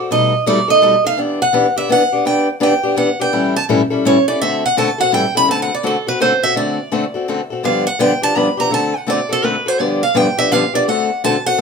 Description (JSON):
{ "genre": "jazz", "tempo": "167 BPM", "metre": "3/4", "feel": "swing 63% on 8ths", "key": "D mixolydian", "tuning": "A4 = 437 Hz", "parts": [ { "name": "picked acoustic archtop guitar", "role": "accompaniment", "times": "0.0-11.6 s", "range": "G2 to A4", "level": "-16 LUFS", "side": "left 3 dB", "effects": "none" }, { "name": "picked steel-string acoustic guitar", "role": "melody", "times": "0.1-11.6 s", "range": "A4 to B5", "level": "-16 LUFS", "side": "right 2 dB", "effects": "none" } ], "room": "wet studio ambience, RT60 0.5 s", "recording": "minimal, uncompressed stereo recording", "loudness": "-13 LUFS", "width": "side -5 dB against mid", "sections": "0.0-5.5 A section; 5.5-11.6 A section", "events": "steel-string acoustic guitar solo 0.0-11.6", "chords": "0.1 Baug7; 1.2 Em7; 3.3 A7; 4.4 D7; 5.1 A7; 5.5 D7; 7.6 G7; 8.7 D7; 9.8 G7; 10.9 D7" }